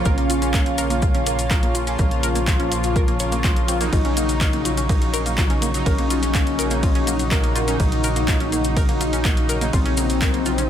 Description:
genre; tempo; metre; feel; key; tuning
melodic techno; 124 BPM; 4/4; straight; unclear; A4 = 441 Hz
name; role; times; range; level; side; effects
fat analog lead; melody; 0.0-10.7 s; Bb3 to F4; -26 LUFS; left 3 dB; wide subtle chorus, sidechain pumping, dub echo
dark analog pad; sustained chords; 0.0-10.7 s; F4 to Db6; -31 LUFS; left 2 dB; chorus, sidechain pumping
analog synth brass; stabs; 0.0-10.7 s; Db3 to F4; -27 LUFS; right 2 dB; chorus, tremolo, sidechain pumping, ping-pong delay
tight sequencer bass; bass; 0.0-10.7 s; Bb1; -26 LUFS; equal; sidechain pumping
overtone-sweeping drone; drone; 0.5-10.7 s; Bb2 to Bb3; -35 LUFS; right 1 dB; none
granular cloud pad; texture; 0.0-10.7 s; Eb4 to Db6; -31 LUFS; equal; built-in reverb, sidechain pumping
analog pluck; arpeggios; 0.1-10.7 s; Bb3 to Db5; -29 LUFS; right 1 dB; chorus, sidechain pumping, ping-pong delay
electronic kick drum; drums; 0.1-10.3 s; none; -21 LUFS; equal; overdrive
punchy analog drum machine; drums; 0.1-10.7 s; handclaps, hi-hat, ride cymbal; -28 LUFS; equal; overdrive
maracas; percussion; 0.1-10.7 s; none; -30 LUFS; left 6 dB; none
room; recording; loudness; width
little or no reverb; none; -17 LUFS; side -10 dB against mid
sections
0.0-10.7 A section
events
none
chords
0.0 Bbm; 3.9 Ebm7/Bb

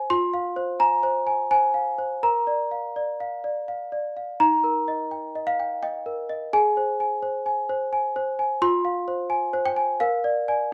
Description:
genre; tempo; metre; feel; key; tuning
classical, lullaby for celesta; 85 BPM; 3/4; rubato; unclear; A4 = 445 Hz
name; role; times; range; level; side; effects
worn celesta; solo; 0.0-10.7 s; Eb4 to C6; -24 LUFS; equal; none
room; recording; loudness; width
moderate large studio reverb, RT60 1.0 s; band playing live in one room; -24 LUFS; mono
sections
0.0-10.7 A section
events
none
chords
0.1 Fm; 2.2 Bb; 4.4 Eb; 6.5 Ab; 8.6 Fm; 10.0 Bb7

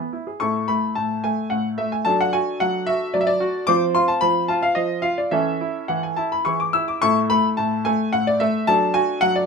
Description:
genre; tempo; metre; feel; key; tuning
classical-period piano sonatina; 110 BPM; 3/4; rubato; unclear; A4 = 440 Hz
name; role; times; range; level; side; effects
bright baby grand piano; solo; 0.0-9.5 s; A2 to E6; -18 LUFS; left 1 dB; none
room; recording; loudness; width
light reverb; minimal, uncompressed stereo recording; -18 LUFS; side -5 dB against mid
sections
0.4-9.5 A section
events
none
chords
0.4 A5; 2.1 D/F#; 3.7 F5; 5.3 A/E; 6.5 E; 7.0 A5; 8.7 D/F#

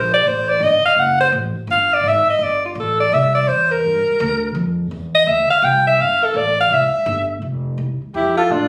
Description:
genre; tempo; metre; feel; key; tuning
jazz, small-group swing and bop; 167 BPM; 4/4; swing 64% on 8ths; F major; A4 = 440 Hz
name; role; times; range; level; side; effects
clear alto saxophone; melody; 0.0-8.7 s; D4 to G5; -17 LUFS; equal; none
upright bass; bass; 0.0-8.7 s; F1 to A2; -26 LUFS; equal; none
breathy trumpet; second line; 8.1-8.7 s; F4 to A4; -21 LUFS; equal; none
room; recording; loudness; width
light reverb; recorded on a phone in the room, studio reverb; -17 LUFS; mono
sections
0.0-7.4 A section; 7.4-8.7 B section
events
alto saxophone solo 0.0-7.4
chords
0.3 F13 (rootless); 1.0 F#m; 1.7 Gsus2; 3.1 C9; 4.6 F5; 6.0 Dmadd11/G; 6.7 C; 7.4 F

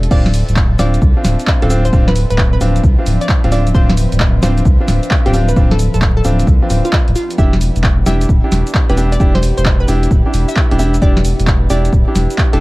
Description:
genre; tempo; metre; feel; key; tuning
UK garage, two-step garage; 132 BPM; 4/4; swing 66% on 16ths; D dorian; A4 = 435 Hz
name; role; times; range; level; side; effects
warm studio violin section; sustained chords; 0.0-12.6 s; B3 to E5; -30 LUFS; left 1 dB; none
saturated sub bass; bass; 0.0-12.6 s; D1 to C2; -14 LUFS; equal; sidechain pumping
punchy analog drum machine; drums; 0.0-12.6 s; crash cymbal, handclaps, hi-hat, shaker, snare drum; -20 LUFS; equal; none
deep dark ambient pad; texture; 0.0-12.6 s; F3 to E5; -27 LUFS; equal; none
hollow square pluck; melody; 0.1-12.6 s; F4 to E5; -24 LUFS; right 1 dB; chorus, tape echo
bright concert grand piano; stabs; 0.1-12.6 s; C4 to G4; -20 LUFS; equal; tape echo
electronic kick drum; drums; 0.1-12.5 s; none; -13 LUFS; equal; none
room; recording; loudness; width
little or no reverb; dark, warm production, vinyl crackle; -10 LUFS; side -20 dB against mid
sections
0.0-12.6 A section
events
none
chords
0.1 Dm7; 7.2 Em7

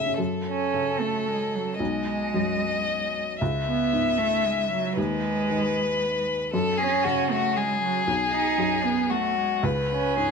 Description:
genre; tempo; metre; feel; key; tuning
neoclassical piano and strings; 114 BPM; 3/4; rubato; F# dorian; A4 = 440 Hz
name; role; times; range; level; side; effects
rich violin; melody; 0.0-10.3 s; F#4 to E5; -26 LUFS; left 4 dB; none
felt-muted upright piano; accompaniment; 0.0-10.3 s; B1 to G#4; -30 LUFS; left 1 dB; none
rich cello; second line; 0.5-10.3 s; F#3 to D#4; -27 LUFS; right 6 dB; none
room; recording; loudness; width
light reverb; none; -22 LUFS; side -5 dB against mid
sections
0.2-10.3 A section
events
none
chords
0.2 F#m; 1.8 B6; 3.4 C#m7; 5.0 G#m/D#; 6.5 F#m; 8.1 B6; 9.6 C#5

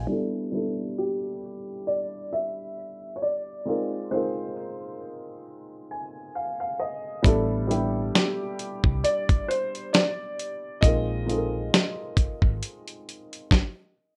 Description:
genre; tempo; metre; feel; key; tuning
lo-fi hip hop; 67 BPM; 4/4; swing 56% on 16ths; A minor; A4 = 440 Hz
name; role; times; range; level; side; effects
dark upright piano; accompaniment; 0.0-13.5 s; G3 to Ab5; -33 LUFS; equal; cassette tape, low-pass filter, plate reverb
hollow-body short-scale fingered electric bass; bass; 0.0, 7.2-12.6 s; Ab1 to C2; -31 LUFS; equal; none
felt-muted upright piano; melody; 1.0-13.5 s; G4 to E5; -32 LUFS; equal; low-pass filter, plate reverb
dusty soul sampler-style drum kit; drums; 7.2-13.7 s; hi-hat, kick drum, snare drum; -24 LUFS; equal; none
room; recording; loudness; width
wet studio reverb, RT60 0.5 s; rough home demo mix; -26 LUFS; mono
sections
0.1-14.2 A section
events
filter sweep 0.1-14.2; upright piano fill 5.5-7.2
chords
0.1 A9sus4; 3.7 Bb9sus4; 7.2 A9sus4; 10.8 Bb9sus4

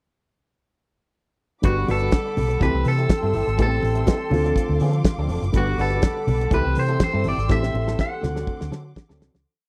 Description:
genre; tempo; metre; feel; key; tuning
disco; 123 BPM; 4/4; straight; G major; A4 = 440 Hz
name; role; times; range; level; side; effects
electric guitar at the edge of break-up; accompaniment; 1.6-9.4 s; F3 to B4; -33 LUFS; equal; none
warm baby grand piano; accompaniment; 1.6-9.5 s; D3 to G4; -31 LUFS; equal; none
dark studio string section; sustained chords; 1.6-9.4 s; G3 to E6; -35 LUFS; equal; none
hollow-body short-scale fingered electric bass; bass; 1.6-9.4 s; F1 to D3; -25 LUFS; equal; none
damped 70s drum kit; drums; 1.6-9.5 s; hi-hat, kick drum, snare drum; -24 LUFS; equal; none
congas; percussion; 1.6-9.5 s; none; -32 LUFS; equal; none
electric guitar at the edge of break-up; melody; 1.7-8.9 s; F#4 to F#5; -29 LUFS; equal; slapback echo
room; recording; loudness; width
small room ambience; dry, close 1970s-style studio recording; -22 LUFS; mono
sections
1.6-9.5 verse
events
fade-out 7.5-9.5; drum fill 7.5-9.5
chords
1.6 Gmaj7; 2.6 C6; 3.6 Am7; 4.3 Dm7; 5.5 Gmaj7; 6.5 C6; 7.5 Am7; 8.2 D7

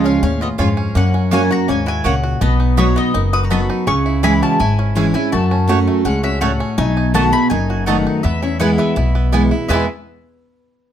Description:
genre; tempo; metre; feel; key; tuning
bluegrass; 165 BPM; 4/4; straight; E major; A4 = 440 Hz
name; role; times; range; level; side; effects
bluegrass banjo; melody; 0.0-9.9 s; G#3 to A4; -27 LUFS; right 4 dB; none
mandolin; melody; 0.0-9.9 s; C#5 to D#6; -23 LUFS; left 2 dB; none
lap resonator guitar; second line; 0.0-9.9 s; F#3 to B4; -25 LUFS; left 5 dB; none
picked steel-string acoustic guitar; accompaniment; 0.0-9.8 s; E2 to F#4; -17 LUFS; equal; none
upright bass; bass; 0.0-9.9 s; F#1 to F#2; -18 LUFS; equal; none
mandolin; stabs; 0.6-9.8 s; A3 to B5; -22 LUFS; right 7 dB; none
room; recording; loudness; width
light reverb; close, detailed microphones; -13 LUFS; side -10 dB against mid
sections
0.0-9.7 A section; 9.7-10.9 B section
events
none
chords
0.0 C#; 1.0 F#; 2.4 B; 3.9 C#m; 5.3 F#m; 6.8 B7; 8.2 E

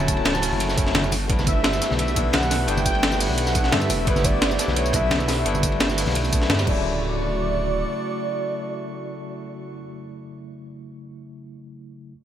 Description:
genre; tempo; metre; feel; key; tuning
liquid drum and bass; 173 BPM; 4/4; straight; D major; A4 = 438 Hz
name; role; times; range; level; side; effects
warm velvety synth lead; melody; 0.0-9.8 s; B4 to A5; -28 LUFS; right 1 dB; chorus, dub echo
barky tine electric piano; accompaniment; 0.0-12.1 s; C#3 to E4; -28 LUFS; equal; overdrive, auto-pan, ping-pong delay
airy breathy pad; sustained chords; 0.0-9.8 s; C#3 to C#6; -32 LUFS; right 2 dB; chorus, sidechain pumping
dark detuned saw bass; bass; 0.0-7.8 s; D1 to G2; -26 LUFS; equal; none
breakbeat sampler-style drum kit; drums; 0.0-6.7 s; crash cymbal, hi-hat, snare drum, tambourine; -25 LUFS; equal; none
congas; percussion; 0.0-6.7 s; none; -31 LUFS; left 3 dB; none
crunchy breakbeat drum kit; drums; 0.1-6.7 s; hi-hat, ride cymbal, snare drum; -30 LUFS; equal; high-pass filter on cymbals, high-pass filter on hats, high-pass filter on snare, high-pass filter on room
electronic kick drum; drums; 0.1-6.7 s; none; -24 LUFS; equal; overdrive
room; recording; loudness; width
light reverb; none; -19 LUFS; side -10 dB against mid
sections
0.0-6.8 A section; 6.8-9.6 B section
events
drop 0.0-6.8; band accent 6.5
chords
0.0 Dmaj7; 1.1 G69; 6.7 Dmaj7

